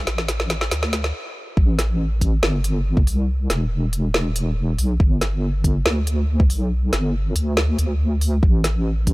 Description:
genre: deep dubstep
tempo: 140 BPM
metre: 4/4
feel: half-time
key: A minor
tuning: A4 = 440 Hz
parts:
  - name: deep soft wobble bass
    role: bass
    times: 0.0-9.1 s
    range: E1 to D2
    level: -20 LUFS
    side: equal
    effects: chorus
  - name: deep house drum kit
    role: drums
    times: 0.1-9.1 s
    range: hi-hat, snare drum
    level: -24 LUFS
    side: equal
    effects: high-pass filter on snare, high-pass filter on hats
  - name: electronic kick drum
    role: drums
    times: 1.6-9.1 s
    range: none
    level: -17 LUFS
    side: equal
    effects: none
room: little or no reverb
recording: none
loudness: -18 LUFS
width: side -21 dB against mid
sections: 0.0-1.6 A section; 1.6-9.1 B section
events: build-up 0.0-1.6; drum fill 0.0-1.1; stop 1.1-1.6; drop 1.6-9.1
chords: none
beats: 0.28 0.71 1.14 | 1.57 2.00 2.43 2.86 | 3.29 3.71 4.14 4.57 | 5.00 5.43 5.86 6.29 | 6.71 7.14 7.57 8.00 | 8.43 8.86

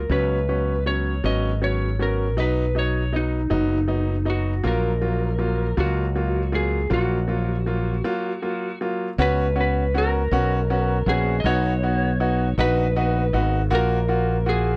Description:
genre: six-eight pop ballad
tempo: 53 BPM (dotted quarters)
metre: 6/8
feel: straight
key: F# major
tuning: A4 = 441 Hz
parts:
  - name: electric slide guitar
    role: melody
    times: 0.0-14.8 s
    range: D#4 to D#5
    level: -29 LUFS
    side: equal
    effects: none
  - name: fretless electric bass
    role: bass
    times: 0.0-14.8 s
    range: F#1 to C#2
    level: -25 LUFS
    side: equal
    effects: none
  - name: clear grand piano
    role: accompaniment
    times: 0.1-14.7 s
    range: F#3 to F#4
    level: -27 LUFS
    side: equal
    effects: none
room: little or no reverb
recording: dry, close 1970s-style studio recording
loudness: -22 LUFS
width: mono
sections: 0.0-9.2 A section; 9.2-14.8 B section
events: break 8.1-9.2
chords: 0.1 C#7sus4; 2.4 B; 4.6 F#maj7/A#; 9.2 C#7sus4; 11.5 B; 13.7 F#maj7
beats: | 0.11 1.24 | 2.38 3.51 | 4.65 5.78 | 6.92 8.05 | 9.19 10.32 | 11.45 12.59 | 13.72

